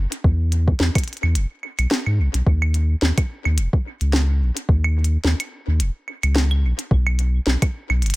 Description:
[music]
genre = IDM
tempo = 108 BPM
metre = 4/4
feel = swing 56% on 16ths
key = Eb phrygian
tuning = A4 = 441 Hz
[part]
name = warm sub bass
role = bass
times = 0.0-8.1 s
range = Eb1 to G#2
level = -18 LUFS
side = equal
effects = none
[part]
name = glitchy drum kit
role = drums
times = 0.1-8.2 s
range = claves, hi-hat, snare drum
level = -24 LUFS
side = equal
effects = overdrive, dub echo
[part]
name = electronic kick drum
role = drums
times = 0.2-7.7 s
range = none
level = -18 LUFS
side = equal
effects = overdrive
[sound]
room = little or no reverb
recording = echo-heavy mix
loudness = -18 LUFS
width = side -20 dB against mid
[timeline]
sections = 0.0-8.2 A section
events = none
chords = none

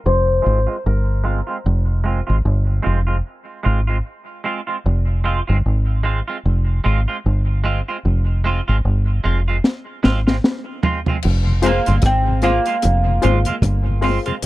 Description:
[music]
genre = dub reggae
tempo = 75 BPM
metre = 4/4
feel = swing 59% on 16ths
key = F minor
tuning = A4 = 440 Hz
[part]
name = mandolin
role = melody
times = 0.0-4.4, 11.7-14.5 s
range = Bb3 to C5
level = -21 LUFS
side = equal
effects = low-pass filter, dub echo
[part]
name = deep dub fingered electric bass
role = bass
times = 0.1-14.2 s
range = F1 to Ab1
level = -17 LUFS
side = equal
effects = none
[part]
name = clean electric guitar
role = accompaniment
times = 0.4-14.3 s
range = Ab3 to F4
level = -25 LUFS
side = right 4 dB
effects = lush chorus, low-pass filter, dub echo
[part]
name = deep reggae drum kit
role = drums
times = 9.6-14.5 s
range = crash cymbal, hi-hat, kick drum, rim click, snare drum, toms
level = -18 LUFS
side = equal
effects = none
[part]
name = mellow tonewheel organ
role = accompaniment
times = 11.5-14.3 s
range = F2 to F4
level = -26 LUFS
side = left 4 dB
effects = slow rotary speaker, dub echo
[part]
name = filtered dub chord stab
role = stabs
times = 11.6-14.3 s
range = F4 to C5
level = -23 LUFS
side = left 5 dB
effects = chorus, dub echo
[sound]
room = small room ambience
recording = dry, close 1970s-style studio recording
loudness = -16 LUFS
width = side -17 dB against mid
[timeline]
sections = 0.0-11.2 A section; 11.2-14.5 B section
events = filter sweep 0.0-11.2; drum fill 9.6-11.2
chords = 0.0 Fm

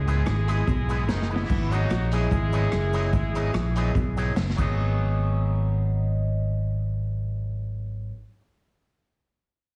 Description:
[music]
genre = ska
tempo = 146 BPM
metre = 4/4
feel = straight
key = G# minor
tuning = A4 = 440 Hz
[part]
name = clear horn section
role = melody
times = 0.0-4.3 s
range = D#3 to G#4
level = -33 LUFS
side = equal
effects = none
[part]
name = fingered electric bass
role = bass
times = 0.0-8.1 s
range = F#1 to C#2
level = -27 LUFS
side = equal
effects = none
[part]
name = electric guitar with an envelope filter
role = accompaniment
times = 0.1-8.2 s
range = F#3 to G#4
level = -36 LUFS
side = equal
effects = spring reverb
[part]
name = street-band drum kit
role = drums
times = 0.1-4.7 s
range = crash cymbal, hi-hat, kick drum, rim click, snare drum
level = -31 LUFS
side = equal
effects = vintage 12-bit sampler grit
[part]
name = cabasa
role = percussion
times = 0.1-5.0 s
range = none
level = -58 LUFS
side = equal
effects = none
[part]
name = electric guitar at the edge of break-up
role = riff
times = 0.3-4.5 s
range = F#2 to B2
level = -36 LUFS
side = equal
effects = none
[sound]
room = light reverb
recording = heavily compressed radio sound, multiband compression, cassette tape, studio reverb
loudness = -25 LUFS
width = mono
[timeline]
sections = 0.0-1.5 A section; 1.5-4.8 B section; 4.8-8.1 C section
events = drum fill 1.1-1.5, 4.4-4.8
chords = 0.0 C#m7; 1.5 G#m7

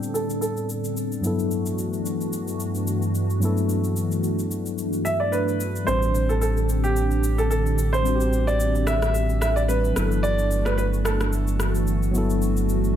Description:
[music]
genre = amapiano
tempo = 110 BPM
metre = 4/4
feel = swing 55% on 16ths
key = unclear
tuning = A4 = 439 Hz
[part]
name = warm grand piano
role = melody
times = 0.0-1.2, 5.0-13.0 s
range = G4 to E5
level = -26 LUFS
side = right 2 dB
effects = low-pass filter, tape echo
[part]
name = mellow tine electric piano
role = accompaniment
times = 0.0-13.0 s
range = G2 to D5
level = -28 LUFS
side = left 4 dB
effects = auto-pan, low-pass filter
[part]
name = hollow soft pad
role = sustained chords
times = 0.0-13.0 s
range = G2 to A4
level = -27 LUFS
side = right 1 dB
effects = ensemble chorus, low-pass filter
[part]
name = electronic shaker and rim click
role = drums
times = 0.0-13.0 s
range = none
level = -33 LUFS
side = left 1 dB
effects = overdrive
[part]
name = sub bass with octave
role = bass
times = 5.9-13.0 s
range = G1 to A1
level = -23 LUFS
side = equal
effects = none
[sound]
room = little or no reverb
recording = none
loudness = -21 LUFS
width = side -10 dB against mid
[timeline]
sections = 0.0-13.0 A section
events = filter sweep 0.0-13.0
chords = 0.0 Am11; 1.2 Gmaj13; 5.9 Am11; 10.0 Gmaj13

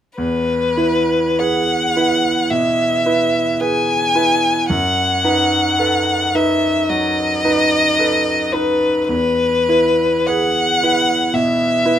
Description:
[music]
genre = classical, romantic duo for violin and grand piano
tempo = 47-58 BPM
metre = 4/4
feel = rubato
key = E major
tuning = A4 = 439 Hz
[part]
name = clear violin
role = melody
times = 0.2-12.0 s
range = B4 to G#5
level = -16 LUFS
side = left 2 dB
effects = none
[part]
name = bright grand piano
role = accompaniment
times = 0.2-12.0 s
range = E2 to B4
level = -18 LUFS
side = right 2 dB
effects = none
[sound]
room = light reverb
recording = minimal, uncompressed stereo recording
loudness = -14 LUFS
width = side -10 dB against mid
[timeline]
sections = 0.2-12.0 A section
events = none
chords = 0.2 E; 4.7 B7/F#; 9.1 E

